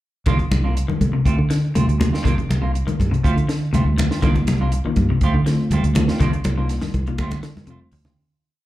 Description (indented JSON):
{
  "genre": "afrobeat",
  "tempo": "121 BPM",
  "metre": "4/4",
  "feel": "straight",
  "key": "C dorian",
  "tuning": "A4 = 440 Hz",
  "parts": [
    { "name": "semi-hollow electric guitar", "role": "arpeggios", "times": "0.3-8.1 s", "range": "C3 to F3", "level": "-25 LUFS", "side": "left 4 dB", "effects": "none" },
    { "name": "semi-hollow electric guitar", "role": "stabs", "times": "0.3-8.2 s", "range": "Eb3 to F4", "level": "-29 LUFS", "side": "right 4 dB", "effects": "lush chorus, slapback echo" },
    { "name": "fingered electric bass", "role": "bass", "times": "0.3-8.1 s", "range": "C2 to D3", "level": "-20 LUFS", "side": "equal", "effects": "none" },
    { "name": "compact cocktail drum kit", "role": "drums", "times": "0.3-8.2 s", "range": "hi-hat, kick drum, snare drum", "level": "-24 LUFS", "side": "equal", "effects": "none" },
    { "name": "congas", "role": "percussion", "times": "0.3-8.2 s", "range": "none", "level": "-24 LUFS", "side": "equal", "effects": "none" },
    { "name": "reed electric piano", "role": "accompaniment", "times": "4.2-7.9 s", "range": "A3 to F4", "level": "-27 LUFS", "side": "left 2 dB", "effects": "slapback echo" }
  ],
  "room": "little or no reverb",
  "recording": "live gig heard through the venue's PA, club reverb",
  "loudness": "-17 LUFS",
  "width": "side -15 dB against mid",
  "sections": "0.3-8.2 groove",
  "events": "fade-out 6.2-8.2; drum fill 7.2-8.2",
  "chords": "0.3 Cm11; 1.3 Dm7; 2.3 Cm11; 3.2 Dm7; 4.2 Cm11; 5.2 Dm7; 6.2 Cm11; 7.2 Dm7",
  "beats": "| 0.27 0.77 1.26 1.76 | 2.25 2.75 3.25 3.74 | 4.24 4.73 5.22 5.72 | 6.21 6.70 7.19 7.68"
}